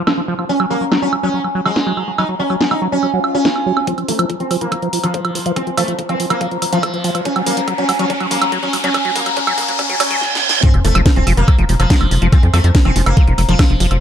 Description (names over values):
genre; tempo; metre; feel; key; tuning
psychedelic trance; 142 BPM; 4/4; straight; unclear; A4 = 440 Hz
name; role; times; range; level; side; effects
liquid acid bass; riff; 0.0-14.0 s; F3 to Gb4; -21 LUFS; equal; chorus, auto-pan, sidechain pumping, tape echo
downlifter, swell, riser, reverse cymbal and sub drop; sound effects; 0.0-12.3 s; none; -22 LUFS; right 1 dB; none
techno drum kit; drums; 0.1-14.0 s; hi-hat, snare drum, woodblock; -20 LUFS; right 2 dB; overdrive, low-pass filter on hats, low-pass filter on perc, low-pass filter on snare
sitar; melody; 0.5-13.9 s; F3 to Eb4; -19 LUFS; equal; phaser, vintage 12-bit sampler grit, sidechain pumping, low-pass filter, ping-pong delay
electronic kick drum; drums; 3.9-13.7 s; none; -13 LUFS; equal; overdrive, high-pass filter on kick
tight sequencer bass; bass; 10.7-14.0 s; Eb1 to F2; -14 LUFS; equal; none
room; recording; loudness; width
light reverb, digital ambience; dark, warm production, high-pass filter; -13 LUFS; side -9 dB against mid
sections
0.0-3.9 A section; 3.9-10.6 B section; 10.6-14.0 C section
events
filter sweep on acid bass 0.0-3.9, 3.9-10.6; swell 3.2-3.9; build-up 3.9-10.6; riser 3.9-10.2; filter sweep on sitar 3.9-10.6; filter sweep 3.9-10.6; drum fill 7.3-10.2, 10.2-10.6; reverse cymbal 9.8-10.6; drop 10.6-14.0; impact 10.6-12.3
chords
0.5 Gb5; 3.9 N.C.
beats
0.07 | 0.49 0.92 1.34 1.76 | 2.18 2.61 3.03 3.45 | 3.87 4.30 4.72 5.14 | 5.56 5.99 6.41 6.83 | 7.25 7.68 8.10 8.52 | 8.94 9.37 9.79 10.21 | 10.63 11.06 11.48 11.90 | 12.32 12.75 13.17 13.59